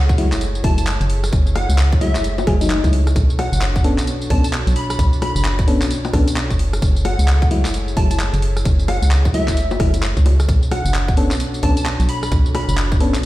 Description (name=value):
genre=UK garage, two-step garage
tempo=131 BPM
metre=4/4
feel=swing 62% on 16ths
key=B dorian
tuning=A4 = 437 Hz
part: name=plucky unison lead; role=melody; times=0.0-12.7 s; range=E5 to B5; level=-27 LUFS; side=equal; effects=digital delay
part: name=airy breathy pad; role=sustained chords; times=0.0-13.3 s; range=D4 to C#5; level=-30 LUFS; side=equal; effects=chorus, sidechain pumping
part: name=organ-like FM bass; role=bass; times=0.0-13.3 s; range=F#1 to C#2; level=-18 LUFS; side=equal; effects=none
part: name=electronic kick drum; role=drums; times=0.1-13.0 s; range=none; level=-17 LUFS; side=equal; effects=none
part: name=garage drum kit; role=drums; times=0.1-13.3 s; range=bongos, handclaps, hi-hat, rim click, tambourine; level=-25 LUFS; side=left 1 dB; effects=none
part: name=FM electric piano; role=stabs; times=0.2-13.1 s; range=F#3 to A4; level=-22 LUFS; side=left 2 dB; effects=chorus, digital delay
room=light reverb, digital ambience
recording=played on a big sound system in a bare room, stone room reverb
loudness=-15 LUFS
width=side -16 dB against mid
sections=0.0-13.3 A section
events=none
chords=0.0 F#m9; 3.2 Bm9; 6.6 F#m9; 10.5 Bm9